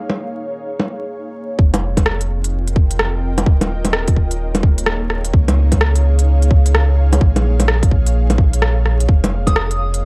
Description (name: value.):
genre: future garage.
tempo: 128 BPM.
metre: 4/4.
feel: swing 63% on 16ths.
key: F minor.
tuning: A4 = 440 Hz.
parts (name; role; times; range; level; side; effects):
ethereal airy pad; sustained chords; 0.0-10.1 s; Bb3 to G5; -29 LUFS; equal; ensemble chorus, built-in reverb, sidechain pumping.
organic electronic drum kit; drums; 0.1-10.0 s; bongos, hi-hat, rim click; -22 LUFS; equal; low-pass filter on perc, low-pass filter on hats, low-pass filter on snare, low-pass filter on room.
warm sub bass; bass; 1.6-10.1 s; Eb1 to Db2; -18 LUFS; equal; tube saturation, sidechain pumping.
electronic kick drum; drums; 1.6-9.5 s; none; -16 LUFS; equal; none.
soft synth bell; melody; 9.5-10.1 s; Eb6; -26 LUFS; equal; chorus, phaser.
room: little or no reverb.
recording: vinyl crackle.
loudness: -16 LUFS.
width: mono.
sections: 0.0-1.6 A section; 1.6-10.1 B section.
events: filter sweep on ambient pad 0.0-1.6.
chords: 0.0 Bbm7; 1.6 Fm7; 3.5 Eb7sus4; 5.3 Db; 7.2 Bbm7; 9.1 Fm7.